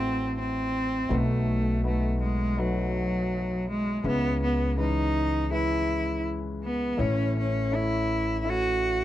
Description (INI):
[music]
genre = acoustic folk-pop ballad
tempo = 82 BPM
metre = 4/4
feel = straight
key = unclear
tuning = A4 = 439 Hz
[part]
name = clear cello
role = melody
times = 0.0-9.0 s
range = F#3 to F#4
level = -27 LUFS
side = right 1 dB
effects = none
[part]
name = warm concert grand piano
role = accompaniment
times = 0.0-9.0 s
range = A1 to C#5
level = -31 LUFS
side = left 3 dB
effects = none
[part]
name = upright bass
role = bass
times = 0.0-9.0 s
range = A1 to C#2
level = -30 LUFS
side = equal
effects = none
[sound]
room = light reverb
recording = dry, close 1970s-style studio recording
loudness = -24 LUFS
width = side -13 dB against mid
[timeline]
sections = 0.0-9.0 A section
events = none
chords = 0.0 Am6; 1.1 B7; 4.0 C#m7; 7.0 A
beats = 0.37 | 1.10 1.84 2.58 3.31 | 4.05 4.79 5.52 6.26 | 6.99 7.73 8.46